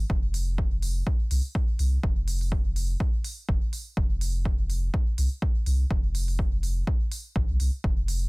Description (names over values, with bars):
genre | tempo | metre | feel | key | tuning
dub techno | 124 BPM | 4/4 | swing 56% on 16ths | F minor | A4 = 441 Hz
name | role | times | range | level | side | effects
soft dub sub bass | bass | 0.0-8.3 s | F1 to C2 | -26 LUFS | equal | tube saturation, sidechain pumping
electronic kick drum | drums | 0.1-7.9 s | none | -26 LUFS | equal | none
electronic hi-hat | drums | 0.3-8.2 s | none | -38 LUFS | right 2 dB | none
room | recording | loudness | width
little or no reverb | dense, heavily limited modern master | -24 LUFS | side -27 dB against mid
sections
0.0-8.3 A section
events
none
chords
none